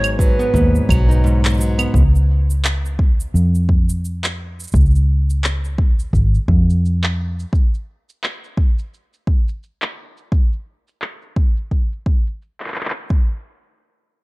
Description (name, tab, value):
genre	folktronica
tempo	86 BPM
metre	4/4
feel	swing 56% on 16ths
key	Db mixolydian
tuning	A4 = 439 Hz
part	dark clarinet	melody	0.0-1.2 s	Cb5 to Db5	-24 LUFS	right 1 dB	tape echo
part	nylon-string guitar	arpeggios	0.0-2.0 s	Ab2 to Eb4	-21 LUFS	equal	tape echo
part	vintage muted fingered electric bass	bass	0.0-7.4 s	Ab1 to F2	-16 LUFS	equal	none
part	electronic claves, cabasa and handclaps	drums	0.0-13.1 s	none	-24 LUFS	equal	overdrive, low-pass filter on perc, studio ambience, low-pass filter on snare
part	electronic kick drum	drums	0.2-13.3 s	none	-16 LUFS	equal	overdrive, studio ambience
room	small room ambience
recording	dark, warm production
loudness	-15 LUFS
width	side -23 dB against mid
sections	0.0-1.9 A section; 1.9-13.1 B section; 13.1-14.2 C section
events	filter sweep on drum 1.9-13.1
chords	0.0 Abm7; 1.9 Db; 7.5 N.C.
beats	0.55 1.24 | 1.94 2.64 3.34 4.03 | 4.73 5.43 6.13 6.83 | 7.52 8.22 8.92 9.62 | 10.31 11.01 11.71 12.41 | 13.10